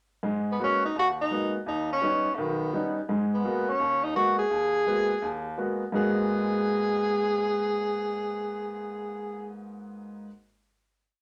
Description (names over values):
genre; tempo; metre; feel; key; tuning
jazz; 169 BPM; 4/4; swing 64% on 8ths; G# minor; A4 = 440 Hz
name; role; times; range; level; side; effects
clear baby grand piano; accompaniment; 0.2-10.3 s; B1 to F#4; -32 LUFS; equal; none
clear tenor saxophone; melody; 0.5-9.5 s; A3 to G#4; -29 LUFS; equal; none
room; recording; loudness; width
wet studio reverb, RT60 0.6 s; faint mains hum; -27 LUFS; mono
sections
0.2-5.9 A section; 5.9-8.8 final chord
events
none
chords
0.2 G#m9; 1.7 D#aug7; 3.1 G#m9